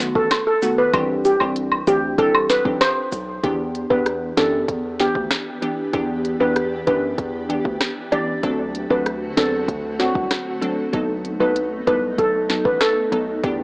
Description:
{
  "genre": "dancehall",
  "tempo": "96 BPM",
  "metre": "4/4",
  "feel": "straight",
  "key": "E minor",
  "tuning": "A4 = 440 Hz",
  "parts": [
    { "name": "glassy wavetable pluck", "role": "accompaniment", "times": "0.0-13.6 s", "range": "D#3 to A4", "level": "-24 LUFS", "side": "equal", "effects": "chorus, cassette tape" },
    { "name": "hard-hitting 808-style bass", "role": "bass", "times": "0.0-13.6 s", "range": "A1 to F#2", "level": "-28 LUFS", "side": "equal", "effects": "none" },
    { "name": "afro-pop drum kit", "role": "drums", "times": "0.0-13.6 s", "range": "hi-hat, kick drum, rim click, snare drum", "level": "-25 LUFS", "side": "equal", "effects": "cassette tape" },
    { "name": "cabasa and woodblock", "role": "percussion", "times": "0.0-3.3 s", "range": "none", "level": "-21 LUFS", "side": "equal", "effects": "none" },
    { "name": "steel pan", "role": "melody", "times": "0.2-13.3 s", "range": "F#4 to D5", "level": "-20 LUFS", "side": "equal", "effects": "analog delay" },
    { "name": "granular cloud pad", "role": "sustained chords", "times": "4.2-13.6 s", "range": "D3 to G4", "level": "-30 LUFS", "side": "equal", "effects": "built-in reverb, sidechain pumping, cassette tape" }
  ],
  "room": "light reverb",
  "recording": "home recording on cassette, AM radio sound",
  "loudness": "-18 LUFS",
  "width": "side -28 dB against mid",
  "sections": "0.0-3.4 A section; 3.4-13.6 B section",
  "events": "none",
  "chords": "0.0 B7; 0.9 Cadd9; 3.4 Em7; 8.4 D7; 10.9 B7"
}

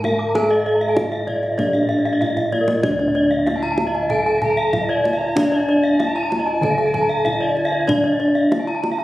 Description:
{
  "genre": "Balinese gamelan",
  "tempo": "95 BPM",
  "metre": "4/4",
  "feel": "straight",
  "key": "D pelog",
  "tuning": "A4 = 438 Hz",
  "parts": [
    { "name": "gamelan-type bronze metallophone", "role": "melody", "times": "0.0-9.0 s", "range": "D4 to Bb4-40c", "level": "-21 LUFS", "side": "equal", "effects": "slapback echo" },
    { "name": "gamelan-type bronze metallophone", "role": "arpeggios", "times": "0.0-9.0 s", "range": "D5 to D6", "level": "-22 LUFS", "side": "left 1 dB", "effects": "none" },
    { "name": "gamelan-type bronze metallophone", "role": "arpeggios", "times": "0.0-9.0 s", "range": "Bb4-40c to Bb5-40c", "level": "-25 LUFS", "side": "right 2 dB", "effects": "none" },
    { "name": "gamelan-type bossed gongs", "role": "bass", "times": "0.0-9.0 s", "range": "D2 to A4-45c", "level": "-24 LUFS", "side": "left 1 dB", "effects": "none" },
    { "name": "kendang", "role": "percussion", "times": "0.0-9.0 s", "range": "none", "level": "-27 LUFS", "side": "right 1 dB", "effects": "none" },
    { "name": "mellow alto recorder", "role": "second line", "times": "3.5-8.1 s", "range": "E5+50c to Bb5-37c", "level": "-27 LUFS", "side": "right 1 dB", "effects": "none" }
  ],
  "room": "moderate recital hall reverb, RT60 1.6 s",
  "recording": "recorded on a phone in the room, studio reverb",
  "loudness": "-16 LUFS",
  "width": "side -16 dB against mid",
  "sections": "0.0-2.8 A section; 2.8-9.0 B section",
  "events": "drum fill 2.2-2.8",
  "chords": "none"
}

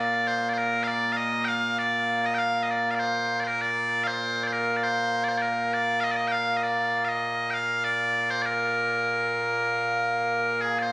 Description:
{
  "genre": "scottish traditional, Scottish pipe music",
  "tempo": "99 BPM",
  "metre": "4/4",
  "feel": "straight",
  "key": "Bb major",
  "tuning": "A4 = 441 Hz",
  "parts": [
    { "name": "loud bright bagpipes", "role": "solo", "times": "0.0-10.9 s", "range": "Bb2 to G5", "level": "-26 LUFS", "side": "equal", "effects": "none" }
  ],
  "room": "light reverb",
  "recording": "recorded on a phone in the room, club reverb",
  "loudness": "-26 LUFS",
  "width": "mono",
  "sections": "0.0-10.9 A section",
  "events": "none",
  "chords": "none"
}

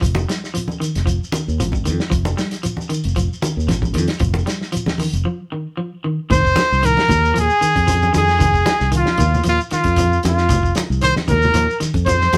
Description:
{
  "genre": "afrobeat",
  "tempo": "115 BPM",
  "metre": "4/4",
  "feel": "straight",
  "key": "F minor",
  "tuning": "A4 = 440 Hz",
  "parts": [
    { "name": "electric guitar at the edge of break-up", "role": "arpeggios", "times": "0.0-12.4 s", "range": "Eb3 to G3", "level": "-26 LUFS", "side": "equal", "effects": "none" },
    { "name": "fingered electric bass", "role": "bass", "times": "0.0-12.4 s", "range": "F1 to F2", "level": "-22 LUFS", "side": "equal", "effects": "none" },
    { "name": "warm soul drum kit", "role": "drums", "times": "0.0-12.4 s", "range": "hi-hat, kick drum, snare drum", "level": "-26 LUFS", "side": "equal", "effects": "none" },
    { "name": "congas", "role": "percussion", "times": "0.0-12.4 s", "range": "none", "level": "-26 LUFS", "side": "equal", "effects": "none" },
    { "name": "shekere", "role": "percussion", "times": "0.0-12.4 s", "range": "none", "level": "-31 LUFS", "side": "equal", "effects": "none" },
    { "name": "clear trumpet", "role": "melody", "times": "6.3-12.4 s", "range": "F4 to C5", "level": "-19 LUFS", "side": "equal", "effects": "none" },
    { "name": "clear trumpet", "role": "second line", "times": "6.3-12.4 s", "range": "F4 to C5", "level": "-28 LUFS", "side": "equal", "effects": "none" }
  ],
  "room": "light reverb",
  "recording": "band playing live in one room",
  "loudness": "-18 LUFS",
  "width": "mono",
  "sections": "0.0-6.3 A section; 6.3-12.4 B section",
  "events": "break 5.3-6.3",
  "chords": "0.0 F7(no3); 6.3 Fm7"
}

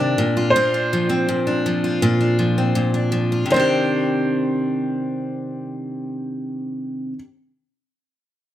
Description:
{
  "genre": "acoustic pop",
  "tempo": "81 BPM",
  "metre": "4/4",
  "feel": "straight",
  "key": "C minor",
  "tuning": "A4 = 440 Hz",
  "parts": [
    { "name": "bright upright piano", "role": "melody", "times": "0.0-7.2 s", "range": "C5 to D5", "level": "-23 LUFS", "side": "equal", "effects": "none" },
    { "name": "picked steel-string acoustic guitar", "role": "accompaniment", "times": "0.0-7.3 s", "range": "Bb2 to G4", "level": "-19 LUFS", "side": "equal", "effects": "none" }
  ],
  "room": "light reverb",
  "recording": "none",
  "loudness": "-18 LUFS",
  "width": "side -12 dB against mid",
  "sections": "0.0-3.5 A section; 3.5-6.5 B section",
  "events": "none",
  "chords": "0.2 Bbadd9; 3.5 Cmadd9"
}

